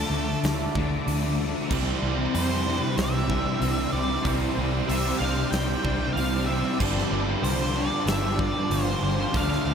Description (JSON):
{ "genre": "rock, shoegaze and dream pop", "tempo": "94 BPM", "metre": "4/4", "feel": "straight", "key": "C major", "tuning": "A4 = 440 Hz", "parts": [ { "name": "octave-fuzz lead guitar", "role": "melody", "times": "0.0-9.7 s", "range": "A4 to G5", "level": "-32 LUFS", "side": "right 1 dB", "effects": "distortion, ping-pong delay" }, { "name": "analog string pad", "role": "sustained chords", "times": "0.0-9.7 s", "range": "E3 to D6", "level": "-34 LUFS", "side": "right 1 dB", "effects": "ensemble chorus" }, { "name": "electric guitar through a small old amp", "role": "arpeggios", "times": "0.0-9.7 s", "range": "E3 to G4", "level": "-35 LUFS", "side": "equal", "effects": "wide subtle chorus, ping-pong delay" }, { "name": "biting overdriven guitar", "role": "riff", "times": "0.0-9.7 s", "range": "G2 to D4", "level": "-33 LUFS", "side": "equal", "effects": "none" }, { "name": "thick fuzz guitar", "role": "riff", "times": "0.0-9.7 s", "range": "G2 to D4", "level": "-30 LUFS", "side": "left 6 dB", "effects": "distortion, ensemble chorus" }, { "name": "vintage muted fingered electric bass", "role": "bass", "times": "0.0-9.7 s", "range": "G1 to F2", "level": "-29 LUFS", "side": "equal", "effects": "none" }, { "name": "huge arena drum kit", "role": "drums", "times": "0.4-9.6 s", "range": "crash cymbal, hi-hat, kick drum, snare drum", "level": "-31 LUFS", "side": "equal", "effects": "none" }, { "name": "overdriven semi-hollow guitar", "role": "riff", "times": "1.7-9.7 s", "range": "G2 to E4", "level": "-31 LUFS", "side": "right 8 dB", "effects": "reverse reverb" } ], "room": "wet cathedral reverb, RT60 6.2 s", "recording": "dreamy mix soaked in reverb", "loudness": "-23 LUFS", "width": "side -7 dB against mid", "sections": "0.0-9.7 A section", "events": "none", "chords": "0.0 Dmadd9; 1.7 Cadd9; 6.8 G7sus4" }